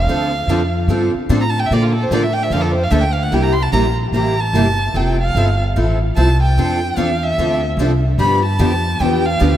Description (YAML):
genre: acoustic string swing (jazz manouche)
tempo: 148 BPM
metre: 4/4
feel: swing 63% on 8ths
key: unclear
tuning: A4 = 436 Hz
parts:
  - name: warm violin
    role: melody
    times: 0.0-9.6 s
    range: F4 to C6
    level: -20 LUFS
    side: right 1 dB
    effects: tape echo
  - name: upright bass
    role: bass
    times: 0.0-9.6 s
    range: F1 to Bb2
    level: -17 LUFS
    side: equal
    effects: none
  - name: picked steel-string acoustic guitar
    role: accompaniment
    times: 0.1-9.5 s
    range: C3 to A4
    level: -22 LUFS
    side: left 4 dB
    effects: wide subtle chorus
  - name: picked steel-string acoustic guitar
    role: accompaniment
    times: 0.1-9.5 s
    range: C3 to A4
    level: -22 LUFS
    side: right 4 dB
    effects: ensemble chorus
room: moderate church reverb, RT60 3.4 s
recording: dreamy mix soaked in reverb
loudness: -14 LUFS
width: side -11 dB against mid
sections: 0.0-9.6 A section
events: violin solo 0.0-9.6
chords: 0.1 Dm7; 1.7 Bbmaj7; 3.3 C7; 4.9 Fmaj7; 6.6 Dm9; 8.2 G7